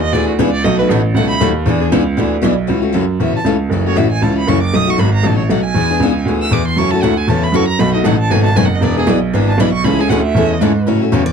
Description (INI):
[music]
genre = acoustic string swing (jazz manouche)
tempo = 235 BPM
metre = 4/4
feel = swing 56% on 8ths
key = A major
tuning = A4 = 440 Hz
[part]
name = warm violin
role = second line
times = 0.0-10.8 s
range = F#4 to E6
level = -20 LUFS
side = right 5 dB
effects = none
[part]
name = clear baby grand piano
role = bass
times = 0.0-11.3 s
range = E1 to A2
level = -14 LUFS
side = right 2 dB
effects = none
[part]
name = picked steel-string acoustic guitar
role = accompaniment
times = 0.1-11.2 s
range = B2 to G#4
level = -17 LUFS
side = left 10 dB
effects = none
[part]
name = picked steel-string acoustic guitar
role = accompaniment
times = 0.1-2.5, 6.8-11.2 s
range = B2 to B4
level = -21 LUFS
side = right 6 dB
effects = none
[part]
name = picked steel-string acoustic guitar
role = melody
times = 11.3 s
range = D5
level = -23 LUFS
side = left 3 dB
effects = none
[sound]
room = little or no reverb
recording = dark, warm production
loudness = -12 LUFS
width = side -6 dB against mid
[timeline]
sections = 0.0-2.7 A section; 2.7-10.9 A section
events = violin solo 0.0-10.9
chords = 0.0 E7; 0.7 B7; 1.7 E6; 2.7 A6; 3.7 F#m7; 4.7 B7; 5.8 E7; 6.8 F#m7; 7.8 B7; 8.8 E7; 9.8 Amaj7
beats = 0.14 0.40 | 0.65 0.91 1.16 1.42 | 1.67 1.93 2.18 2.44 | 2.69 2.95 3.20 3.46 | 3.71 3.97 4.22 4.48 | 4.73 4.99 5.24 5.50 | 5.75 6.01 6.27 6.52 | 6.78 7.03 7.29 7.54 | 7.80 8.05 8.31 8.56 | 8.82 9.07 9.33 9.59 | 9.84 10.10 10.35 10.61 | 10.86 11.12